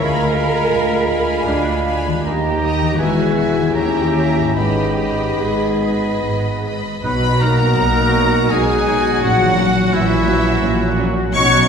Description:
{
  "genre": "classical, slow romantic movement for symphony orchestra",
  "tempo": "71-87 BPM",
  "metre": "3/4",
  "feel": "rubato",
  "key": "G# minor, B major from 7.0 s",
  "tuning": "A4 = 440 Hz",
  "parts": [
    { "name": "warm symphonic violin section", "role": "melody", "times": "0.0-11.7 s", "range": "E5 to C#6", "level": "-24 LUFS", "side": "left 2 dB", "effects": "none" },
    { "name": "mellow oboe", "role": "second line", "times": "0.0-11.7 s", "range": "E4 to B5", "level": "-25 LUFS", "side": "right 2 dB", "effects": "none" },
    { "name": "rich symphonic violin section", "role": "second line", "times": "0.0-11.7 s", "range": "E4 to A#5", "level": "-28 LUFS", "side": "left 1 dB", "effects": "none" },
    { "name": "warm clarinet", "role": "second line", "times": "0.0-11.7 s", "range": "E4 to F5", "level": "-27 LUFS", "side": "equal", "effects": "none" },
    { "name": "mellow bassoon", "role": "accompaniment", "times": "0.0-6.7 s", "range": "Ab3 to C#4", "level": "-27 LUFS", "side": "right 4 dB", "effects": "none" },
    { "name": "rich symphonic viola section", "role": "accompaniment", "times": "0.0-11.4 s", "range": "F#3 to A#4", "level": "-23 LUFS", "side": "right 1 dB", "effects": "none" },
    { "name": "mellow French horn section", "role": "sustained chords", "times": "0.0-11.7 s", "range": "E3 to F4", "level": "-23 LUFS", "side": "left 3 dB", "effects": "none" },
    { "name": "concert harp", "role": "arpeggios", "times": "0.0-11.7 s", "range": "G#2 to F#5", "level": "-23 LUFS", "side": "left 4 dB", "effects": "none" },
    { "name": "rich symphonic cello section", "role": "bass", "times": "0.0-11.7 s", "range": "D2 to B2", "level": "-23 LUFS", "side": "right 2 dB", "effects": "none" },
    { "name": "rich symphonic double bass section", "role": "bass", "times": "0.0-11.7 s", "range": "E1 to D#2", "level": "-23 LUFS", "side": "right 2 dB", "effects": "none" },
    { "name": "bright concert flute", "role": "second line", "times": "7.0-11.7 s", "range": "E5 to C#6", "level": "-25 LUFS", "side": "left 2 dB", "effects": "none" },
    { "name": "bright trombone section", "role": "sustained chords", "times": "7.0-11.7 s", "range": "F#3 to D#4", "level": "-25 LUFS", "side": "right 2 dB", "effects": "none" },
    { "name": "clear trumpet section", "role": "stabs", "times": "7.1-11.7 s", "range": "F#4", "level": "-25 LUFS", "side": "right 2 dB", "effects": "none" }
  ],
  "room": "wet scoring stage reverb, RT60 1.5 s",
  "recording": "heard from further back in the room",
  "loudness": "-14 LUFS",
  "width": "side -6 dB against mid",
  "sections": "0.0-7.0 A section; 7.0-11.7 B section",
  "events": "none",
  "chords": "0.0 Ddim7; 2.3 D#; 3.0 E; 3.7 D#7b9; 4.6 G#m; 7.0 B; 9.2 F#7/A#"
}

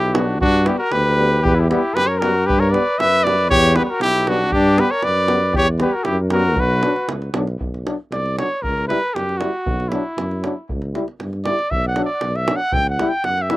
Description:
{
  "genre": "balkan folk, Balkan brass band",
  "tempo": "117 BPM",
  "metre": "2/4",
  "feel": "straight",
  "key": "B harmonic minor",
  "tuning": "A4 = 440 Hz",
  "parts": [
    { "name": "mellow trumpet", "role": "melody", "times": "0.0-13.6 s", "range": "E4 to G5", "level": "-19 LUFS", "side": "equal", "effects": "slapback echo" },
    { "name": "clear flugelhorn", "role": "second line", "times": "0.0-7.1 s", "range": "D4 to B4", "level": "-22 LUFS", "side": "left 3 dB", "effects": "none" },
    { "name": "mellow tuba", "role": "bass", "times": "0.0-13.5 s", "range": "B1 to G2", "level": "-21 LUFS", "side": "equal", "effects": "none" },
    { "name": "clear euphonium", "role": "accompaniment", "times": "0.1-13.6 s", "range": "F#3 to G3", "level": "-28 LUFS", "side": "right 5 dB", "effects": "none" },
    { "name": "warm trombone", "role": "accompaniment", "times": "0.1-13.6 s", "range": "B3 to E4", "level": "-25 LUFS", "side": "left 5 dB", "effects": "none" },
    { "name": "davul", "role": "percussion", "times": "0.1-13.6 s", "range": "none", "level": "-25 LUFS", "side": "right 1 dB", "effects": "none" }
  ],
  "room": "little or no reverb",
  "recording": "recorded outdoors, with no room sound",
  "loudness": "-16 LUFS",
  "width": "side -18 dB against mid",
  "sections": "0.0-7.6 A section; 7.6-13.6 B section",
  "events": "trumpet solo 7.6-13.6",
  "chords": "0.4 G; 1.4 Em; 2.5 G; 3.5 Em; 4.5 G; 5.5 Em; 6.6 Bm; 8.6 C#dim; 9.7 Bm; 10.7 C#dim; 11.7 Bm; 12.8 C#dim"
}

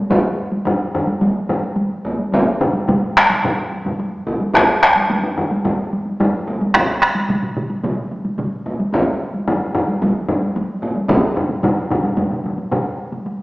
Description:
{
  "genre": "japanese traditional, taiko drum ensemble",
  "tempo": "110 BPM",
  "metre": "4/4",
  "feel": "straight",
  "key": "none",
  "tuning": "none",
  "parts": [
    { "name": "taiko ensemble", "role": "percussion", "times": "0.1-13.4 s", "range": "none", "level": "-21 LUFS", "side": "equal", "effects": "none" },
    { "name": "taiko ensemble", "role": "percussion", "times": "0.1-12.8 s", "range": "none", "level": "-18 LUFS", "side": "left 1 dB", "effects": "none" },
    { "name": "taiko ensemble", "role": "percussion", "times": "0.1-11.2 s", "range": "none", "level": "-20 LUFS", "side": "equal", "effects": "none" },
    { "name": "taiko ensemble", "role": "percussion", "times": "2.6-12.8 s", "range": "none", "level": "-20 LUFS", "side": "right 1 dB", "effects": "none" }
  ],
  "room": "wet scoring stage reverb, RT60 1.5 s",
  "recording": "recorded in a church or concert hall, small speaker sound",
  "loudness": "-16 LUFS",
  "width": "side -21 dB against mid",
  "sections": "0.0-13.3 A section",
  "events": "speeding up 0.0-13.4",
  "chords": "none"
}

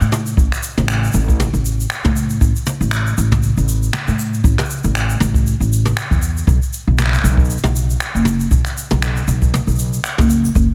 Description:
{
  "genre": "folktronica",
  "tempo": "118 BPM",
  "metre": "4/4",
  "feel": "swing 56% on 16ths",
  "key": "unclear",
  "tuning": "A4 = 436 Hz",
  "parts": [
    { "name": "upright bass", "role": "bass", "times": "0.0-10.6 s", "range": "F#1 to A2", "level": "-19 LUFS", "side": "equal", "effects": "none" },
    { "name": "jazz brush drum kit", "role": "drums", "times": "0.0-10.7 s", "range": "finger snaps, shaker, toms", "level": "-23 LUFS", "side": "equal", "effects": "none" },
    { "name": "kick drum", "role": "drums", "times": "0.4-10.7 s", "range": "none", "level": "-20 LUFS", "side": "equal", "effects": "none" }
  ],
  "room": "little or no reverb",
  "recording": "none",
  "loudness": "-17 LUFS",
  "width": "mono",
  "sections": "0.0-10.7 A section",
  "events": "none",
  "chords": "none"
}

